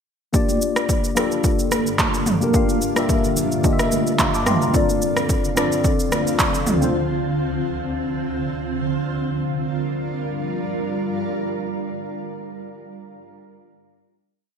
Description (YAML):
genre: amapiano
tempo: 109 BPM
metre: 4/4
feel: swing 55% on 16ths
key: G minor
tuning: A4 = 440 Hz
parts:
  - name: mellow tine electric piano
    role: accompaniment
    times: 0.3-7.0 s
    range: Bb3 to D6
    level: -21 LUFS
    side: left 4 dB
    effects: analog chorus
  - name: granular cloud pad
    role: sustained chords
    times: 1.3-12.1 s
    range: D2 to Bb4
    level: -25 LUFS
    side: right 2 dB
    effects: built-in reverb, sidechain pumping
  - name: deep house drum kit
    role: drums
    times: 0.3-6.9 s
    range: handclaps, kick drum, rim click, shaker, toms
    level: -20 LUFS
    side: right 1 dB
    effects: overdrive, gated reverb
  - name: congas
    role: percussion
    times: 0.5-6.9 s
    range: none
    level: -30 LUFS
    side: right 10 dB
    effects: none
room: moderate plate reverb, RT60 1.3 s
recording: bright 1980s-style digital production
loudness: -18 LUFS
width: side -6 dB against mid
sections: 0.3-9.1 groove; 9.1-11.3 final chord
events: none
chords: 0.3 Gm7; 4.7 Dm7; 9.1 Gm7